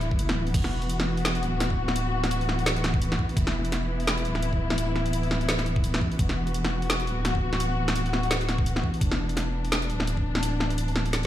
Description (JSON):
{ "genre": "half-time drum and bass", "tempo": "170 BPM", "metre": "4/4", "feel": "swing 57% on 16ths, half-time", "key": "unclear", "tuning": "A4 = 442 Hz", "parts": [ { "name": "dark studio string section", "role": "sustained chords", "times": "0.0-11.3 s", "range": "E3 to F#4", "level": "-30 LUFS", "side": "left 2 dB", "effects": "sidechain pumping" }, { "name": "saturated sub bass", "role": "bass", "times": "0.0-11.3 s", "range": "D1 to A1", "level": "-28 LUFS", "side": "equal", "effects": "none" }, { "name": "drum and bass drum kit", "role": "drums", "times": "0.0-11.3 s", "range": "crash cymbal, hi-hat, snare drum", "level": "-29 LUFS", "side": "equal", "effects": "overdrive" }, { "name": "electronic kick drum", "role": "drums", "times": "0.1-10.2 s", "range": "none", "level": "-26 LUFS", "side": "equal", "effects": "overdrive" } ], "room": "light reverb", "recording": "played on a big sound system in a bare room, large studio reverb", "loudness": "-24 LUFS", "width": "side -12 dB against mid", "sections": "0.0-11.3 A section", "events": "kick drops out 0.2-0.5", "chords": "0.0 Esus2", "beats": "0.19 | 0.54 0.90 1.25 1.60 | 1.96 2.31 2.66 3.01 | 3.37 3.72 4.07 4.43 | 4.78 5.13 5.48 5.84 | 6.19 6.54 6.90 7.25 | 7.60 7.96 8.31 8.66 | 9.01 9.37 9.72 10.07 | 10.43 10.78 11.13" }